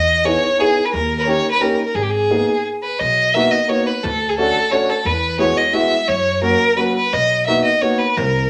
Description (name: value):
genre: musette waltz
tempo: 175 BPM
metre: 3/4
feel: straight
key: B major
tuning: A4 = 440 Hz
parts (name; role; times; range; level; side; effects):
- rich violin; melody; 0.0-8.5 s; G4 to E5; -18 LUFS; equal; none
- upright bass; bass; 0.0-8.5 s; G#1 to F#2; -27 LUFS; equal; none
- warm upright piano; accompaniment; 0.2-8.0 s; F#3 to G#4; -23 LUFS; equal; none
room: wet studio reverb, RT60 0.8 s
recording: none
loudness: -17 LUFS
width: mono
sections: 0.0-3.0 A section; 3.0-8.5 B section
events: stop 2.6-3.0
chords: 0.0 Emaj7; 0.9 D#7; 1.9 G#madd9; 3.0 Bmaj7; 4.0 Dmaj7; 5.1 Eadd9; 6.1 F#; 7.1 Bmaj7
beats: 0.24 0.58 | 0.92 1.26 1.60 | 1.95 2.29 2.65 | 3.00 3.34 3.69 | 4.03 4.37 4.72 | 5.06 5.40 5.74 | 6.08 6.42 6.77 | 7.12 7.47 7.81 | 8.16